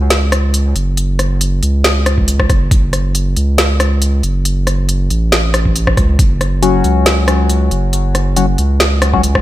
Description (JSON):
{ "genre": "deep dubstep", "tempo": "138 BPM", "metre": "4/4", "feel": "swing 54% on 16ths, half-time", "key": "F# minor", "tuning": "A4 = 440 Hz", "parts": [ { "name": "saturated sub bass", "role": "bass", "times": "0.0-9.4 s", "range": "F#1 to C#2", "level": "-14 LUFS", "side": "equal", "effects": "none" }, { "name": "deep house drum kit", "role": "drums", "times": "0.1-9.4 s", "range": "hi-hat, rim click, snare drum", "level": "-16 LUFS", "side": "equal", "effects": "studio reverb" }, { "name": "electronic kick drum", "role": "drums", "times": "2.2-2.8, 5.7-6.3, 9.1-9.4 s", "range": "none", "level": "-13 LUFS", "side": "equal", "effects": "overdrive, studio reverb" }, { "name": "percussive organ stab", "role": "stabs", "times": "6.6-9.2 s", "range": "F#3 to F#4", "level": "-16 LUFS", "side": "left 5 dB", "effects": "chorus, cassette tape, dub echo" } ], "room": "little or no reverb", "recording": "none", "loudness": "-11 LUFS", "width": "side -14 dB against mid", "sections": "0.0-9.4 A section", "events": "none", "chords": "0.0 F#5" }